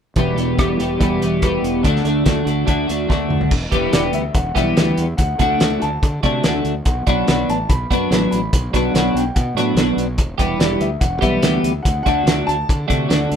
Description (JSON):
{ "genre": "indie rock", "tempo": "144 BPM", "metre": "4/4", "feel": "straight", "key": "E minor", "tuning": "A4 = 439 Hz", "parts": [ { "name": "twelve-string electric guitar", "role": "riff", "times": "0.2-13.4 s", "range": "E2 to G4", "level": "-18 LUFS", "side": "equal", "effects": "double-tracked left and right" }, { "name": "fuzz fingered electric bass", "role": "bass", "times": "0.2-13.4 s", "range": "E1 to D3", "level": "-24 LUFS", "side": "equal", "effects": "overdrive" }, { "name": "cloth-damped thuddy drum kit", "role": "drums", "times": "0.2-13.4 s", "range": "crash cymbal, hi-hat, kick drum, rim click, snare drum, toms", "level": "-19 LUFS", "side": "equal", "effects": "none" }, { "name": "warm upright piano", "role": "melody", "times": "3.9-12.9 s", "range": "D5 to B5", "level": "-24 LUFS", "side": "left 1 dB", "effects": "none" } ], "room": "moderate small room reverb, RT60 0.5 s", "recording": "rough home demo mix", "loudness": "-15 LUFS", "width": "side -8 dB against mid", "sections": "0.2-3.5 A section; 3.5-13.4 B section", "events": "drum fill 3.1-3.5", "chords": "0.2 Em; 1.8 D; 3.5 Em; 5.2 D; 6.9 Bm; 10.2 Em; 11.9 D", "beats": "| 0.16 0.58 1.00 1.42 | 1.84 2.26 2.68 3.10 | 3.52 3.93 4.35 4.77 | 5.19 5.60 6.02 6.44 | 6.85 7.27 7.69 8.10 | 8.52 8.94 9.35 9.77 | 10.19 10.60 11.02 11.44 | 11.85 12.27 12.69 13.10" }